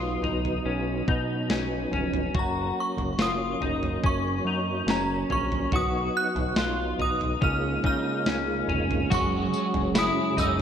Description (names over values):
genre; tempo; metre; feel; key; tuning
dream pop; 71 BPM; 4/4; straight; F# major; A4 = 440 Hz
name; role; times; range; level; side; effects
synth chime; melody; 0.0-10.6 s; A#5 to F#6; -30 LUFS; equal; ensemble chorus, tremolo, ping-pong delay
mellow tonewheel organ; sustained chords; 0.0-10.6 s; C#3 to E#4; -30 LUFS; right 2 dB; chorus vibrato, fast rotary speaker
clean electric guitar; arpeggios; 0.0-10.6 s; C#4 to F#4; -30 LUFS; left 3 dB; analog chorus, ping-pong delay
fat analog bass; bass; 0.0-10.6 s; E#1 to C#3; -32 LUFS; equal; none
crisp 8-bit digital drum machine; drums; 0.2-10.6 s; kick drum, snare drum, tambourine, toms; -29 LUFS; equal; gated reverb
electric guitar at the edge of break-up; accompaniment; 9.1-10.6 s; F#2 to G#4; -31 LUFS; right 5 dB; harmonic tremolo, ensemble chorus
room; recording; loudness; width
moderate lush hall reverb, RT60 2.5 s; bright 1980s-style digital production; -24 LUFS; side -8 dB against mid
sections
0.0-9.1 A section; 9.1-10.6 B section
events
none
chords
0.0 B; 2.3 F#; 5.7 B; 7.4 C#6; 9.1 F#sus2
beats
0.66 1.50 | 2.35 3.19 4.04 4.88 | 5.72 6.57 7.42 8.26 | 9.11 9.95